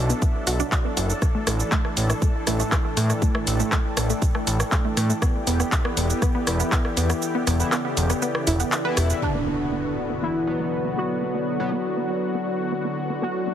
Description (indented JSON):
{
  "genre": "melodic techno",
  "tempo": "120 BPM",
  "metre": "4/4",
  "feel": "straight",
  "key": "B minor",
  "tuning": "A4 = 440 Hz",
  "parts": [
    { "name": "lush unison pad", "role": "sustained chords", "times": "0.0-13.5 s", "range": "C#3 to A4", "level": "-31 LUFS", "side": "left 1 dB", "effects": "chorus, sidechain pumping" },
    { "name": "fat analog bass", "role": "bass", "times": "0.0-9.1 s", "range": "E1 to A2", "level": "-22 LUFS", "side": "equal", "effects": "tube saturation, sidechain pumping" },
    { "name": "warbly tape-like pad", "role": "texture", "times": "0.0-13.5 s", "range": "B3 to G5", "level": "-32 LUFS", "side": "equal", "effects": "chorus, built-in reverb, sidechain pumping" },
    { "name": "wide unison pluck", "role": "arpeggios", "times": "0.1-13.5 s", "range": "A3 to D5", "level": "-30 LUFS", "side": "moving between left 4 dB and right 6 dB", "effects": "auto-pan, sidechain pumping, dub echo" },
    { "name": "house drum kit", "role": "drums", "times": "0.1-9.3 s", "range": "crash cymbal, handclaps, hi-hat, rim click, shaker", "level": "-27 LUFS", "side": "equal", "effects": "low-pass filter on cymbals, low-pass filter on perc, low-pass filter on hats, low-pass filter on snare" },
    { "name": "electronic kick drum", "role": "drums", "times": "0.2-6.8 s", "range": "none", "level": "-22 LUFS", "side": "equal", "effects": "none" },
    { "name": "sync-sweep polysynth", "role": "stabs", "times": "0.6-11.7 s", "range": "A2 to E4", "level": "-32 LUFS", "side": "left 1 dB", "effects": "chorus, sidechain pumping, dub echo" },
    { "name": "resonant sweep polysynth", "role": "melody", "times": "9.2-13.5 s", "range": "D4 to F#4", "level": "-29 LUFS", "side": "right 2 dB", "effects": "chorus, sidechain pumping, ping-pong delay" },
    { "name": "soft supersaw", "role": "second line", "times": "9.2-13.5 s", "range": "D3 to F#3", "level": "-31 LUFS", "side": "left 1 dB", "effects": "sidechain pumping, low-pass filter, dub echo" },
    { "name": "impact", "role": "sound effects", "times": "9.2-11.2 s", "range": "none", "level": "-32 LUFS", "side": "equal", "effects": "none" }
  ],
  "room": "light reverb, digital ambience",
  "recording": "heavily compressed radio sound",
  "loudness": "-21 LUFS",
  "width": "side -10 dB against mid",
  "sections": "0.0-9.2 A section; 9.2-13.5 B section",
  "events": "filter sweep on analog polysynth 0.0-9.2; kick drops out 7.2-9.2; impact 9.2-11.2; filter sweep on supersaw synth 9.2-13.5",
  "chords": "0.0 Bm; 1.2 Asus4; 5.2 Em; 9.2 Bm"
}